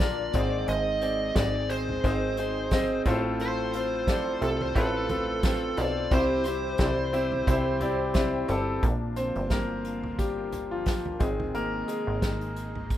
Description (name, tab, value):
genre	piano-driven pop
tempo	88 BPM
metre	4/4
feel	swing 56% on 16ths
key	unclear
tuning	A4 = 441 Hz
part	smooth overdriven lead guitar	melody	0.0-8.5 s	A4 to Eb5	-30 LUFS	equal	none
part	clear concert grand piano	accompaniment	0.0-13.0 s	Ab2 to A5	-29 LUFS	left 1 dB	none
part	lush unison pad	sustained chords	0.0-13.0 s	C3 to F4	-42 LUFS	right 1 dB	none
part	plucky analog bass	bass	0.0-13.0 s	G1 to C2	-32 LUFS	right 1 dB	none
part	unplugged drum kit	drums	0.0-13.0 s	hi-hat, kick drum, snare drum, toms	-28 LUFS	right 1 dB	none
part	tambourine	percussion	0.0-13.0 s	none	-49 LUFS	right 6 dB	none
room	studio ambience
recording	rough home demo mix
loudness	-25 LUFS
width	side -12 dB against mid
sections	0.0-8.8 A section; 8.8-13.0 B section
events	grand piano fill 7.8-8.8; grand piano solo 8.8-13.0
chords	0.3 Ab; 3.1 F/A; 6.1 C; 8.8 Bb; 11.2 Ab